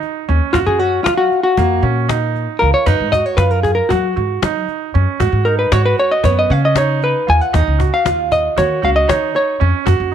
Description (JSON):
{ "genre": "progressive instrumental, band music in an uneven meter", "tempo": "232 BPM (eighths)", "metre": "9/8", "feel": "straight", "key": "F# major", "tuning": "A4 = 440 Hz", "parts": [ { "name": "clear baby grand piano", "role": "arpeggios", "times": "0.0-10.1 s", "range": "A#3 to F#4", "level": "-20 LUFS", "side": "right 12 dB", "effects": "none" }, { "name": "cajon", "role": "drums", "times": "0.0-10.1 s", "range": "none", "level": "-22 LUFS", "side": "left 5 dB", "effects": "none" }, { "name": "upright bass", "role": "bass", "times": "0.3-10.1 s", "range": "C#2 to F#3", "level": "-17 LUFS", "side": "equal", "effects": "none" }, { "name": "hollow-body jazz guitar", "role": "melody", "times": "0.5-9.8 s", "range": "E#4 to G#5", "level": "-15 LUFS", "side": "left 2 dB", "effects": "none" } ], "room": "light reverb, studio ambience", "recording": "1960s-style stereo", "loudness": "-13 LUFS", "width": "side -9 dB against mid", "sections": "0.0-10.1 A section", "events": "hollow-body jazz guitar solo 0.0-10.1", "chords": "0.0 D#7(no3); 0.5 F#maj7; 2.9 F#maj7sus2; 5.2 G#m7; 7.5 D#m7" }